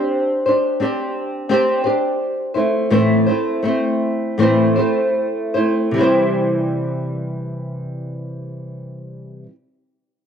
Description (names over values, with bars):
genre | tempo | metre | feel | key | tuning
pop | 74-88 BPM | 4/4 | swing 55% on 16ths | C major | A4 = 440 Hz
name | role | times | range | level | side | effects
flamenco guitar | accompaniment | 0.0-9.5 s | A2 to C5 | -17 LUFS | equal | double-tracked left and right
room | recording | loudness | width
moderate spring reverb, RT60 1.8 s | home recording on cassette | -16 LUFS | side -8 dB against mid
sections
0.0-5.9 A section; 5.9-9.2 B section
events
slowing down 0.1-5.9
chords
0.0 Csus2; 2.6 Am; 5.9 C